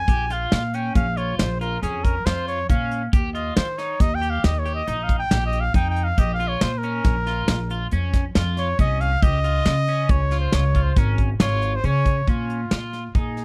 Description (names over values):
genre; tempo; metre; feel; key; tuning
progressive instrumental, band music in an uneven meter; 138 BPM; 7/4; straight; Bb dorian; A4 = 440 Hz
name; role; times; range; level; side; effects
warm trumpet; melody; 0.0-13.4 s; F4 to Ab5; -28 LUFS; equal; none
electric guitar at the edge of break-up; arpeggios; 0.1-13.4 s; Db4 to G4; -34 LUFS; equal; subtle chorus
upright bass; bass; 0.1-13.4 s; Ab1 to Eb3; -26 LUFS; equal; none
soft brush drum kit; drums; 0.1-13.4 s; hi-hat, kick drum, snare drum; -23 LUFS; equal; none
room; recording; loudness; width
studio reverb; dry, close 1970s-style studio recording; -22 LUFS; mono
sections
0.0-12.3 A section; 12.3-13.4 B section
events
trumpet solo 0.0-12.3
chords
0.1 Bbm; 3.1 Eb; 6.2 Bbm; 9.2 Db; 12.3 Bbm7